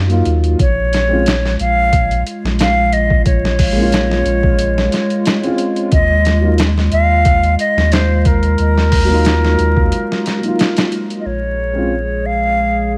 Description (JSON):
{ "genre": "trip hop", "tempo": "90 BPM", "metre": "4/4", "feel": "swing 54% on 16ths", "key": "Bb minor", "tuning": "A4 = 440 Hz", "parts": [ { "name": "dark upright piano", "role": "accompaniment", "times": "0.0-11.9 s", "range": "Gb3 to F4", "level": "-22 LUFS", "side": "equal", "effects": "tremolo" }, { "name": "warm sub bass", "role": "bass", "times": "0.0-13.0 s", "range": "Bb1 to Gb2", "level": "-18 LUFS", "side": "equal", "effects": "none" }, { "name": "boom bap sampler-style drum kit", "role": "drums", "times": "0.1-11.2 s", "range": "hi-hat, kick drum, snare drum", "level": "-19 LUFS", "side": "equal", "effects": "none" }, { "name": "breathy silver concert flute", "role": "melody", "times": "0.6-12.9 s", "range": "Bb4 to F5", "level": "-20 LUFS", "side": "equal", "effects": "tape echo" }, { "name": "warbly tape-like pad", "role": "sustained chords", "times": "1.4-13.0 s", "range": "Ab3 to Ab4", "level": "-25 LUFS", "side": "equal", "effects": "chorus, built-in reverb" } ], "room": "light reverb", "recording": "vinyl crackle", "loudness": "-14 LUFS", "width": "mono", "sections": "0.0-11.3 A section; 11.3-13.0 B section", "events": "break 9.9-11.3", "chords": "0.0 Ebmadd9; 0.6 Bbm7; 5.9 Ebmadd9; 11.3 Bbm7" }